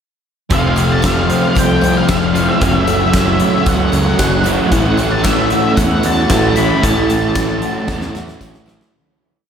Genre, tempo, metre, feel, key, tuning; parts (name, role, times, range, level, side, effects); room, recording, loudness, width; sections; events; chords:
rock, shoegaze and dream pop; 114 BPM; 4/4; straight; A major; A4 = 440 Hz
octave-fuzz lead guitar; melody; 0.5-8.4 s; E5 to B5; -20 LUFS; left 1 dB; distortion, diffuse ambient delay
crunchy overdriven guitar; riff; 0.5-8.9 s; F2 to F#4; -18 LUFS; right 4 dB; reverse reverb
crunchy overdriven guitar; riff; 0.5-8.9 s; A2 to F#4; -21 LUFS; equal
thick fuzz guitar; riff; 0.5-8.9 s; F2 to A3; -20 LUFS; left 5 dB; distortion, lush chorus
growling picked electric bass; bass; 0.5-8.8 s; F1 to E2; -20 LUFS; equal; overdrive
huge arena drum kit; drums; 0.5-8.9 s; hi-hat, kick drum, snare drum; -20 LUFS; equal
electric guitar through a small old amp; arpeggios; 0.8-8.9 s; E3 to F#4; -23 LUFS; equal; analog chorus, diffuse ambient delay
tambourine; percussion; 0.8-8.8 s; -34 LUFS; left 11 dB
wet lush hall reverb, RT60 2.1 s; dreamy mix soaked in reverb; -12 LUFS; side -8 dB against mid
0.5-8.9 A section
fade-out 6.8-8.9; drum fill 7.9-8.9
0.5 Fmaj7; 2.6 F#m7; 4.7 A6